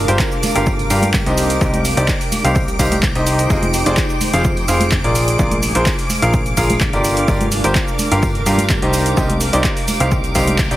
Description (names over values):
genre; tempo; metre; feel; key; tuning
piano house; 127 BPM; 4/4; straight; unclear; A4 = 436 Hz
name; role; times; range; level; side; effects
string machine, violins; sustained chords; 0.0-10.8 s; D6; -26 LUFS; equal; ensemble chorus, sidechain pumping
plucky analog bass; bass; 0.0-10.8 s; F1 to G2; -19 LUFS; equal; sidechain pumping
granular cloud pad; texture; 0.0-10.8 s; D4 to G5; -25 LUFS; right 1 dB; built-in reverb, sidechain pumping
clear concert grand piano; riff; 0.1-10.8 s; Eb4 to F5; -20 LUFS; equal; sidechain pumping, tape echo
punchy analog drum machine; drums; 0.1-10.8 s; handclaps, hi-hat, shaker; -22 LUFS; right 1 dB; overdrive
tambourine and congas; percussion; 0.1-10.8 s; none; -26 LUFS; right 1 dB; none
electronic kick drum; drums; 0.2-10.7 s; none; -20 LUFS; equal; overdrive
room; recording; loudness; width
light reverb; heavily compressed radio sound; -13 LUFS; side -15 dB against mid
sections
0.0-10.8 A section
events
band accent 10.6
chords
0.0 Gm7; 1.4 Cm; 3.5 Fm7; 5.2 Bb7; 7.0 Gm7; 8.9 Cm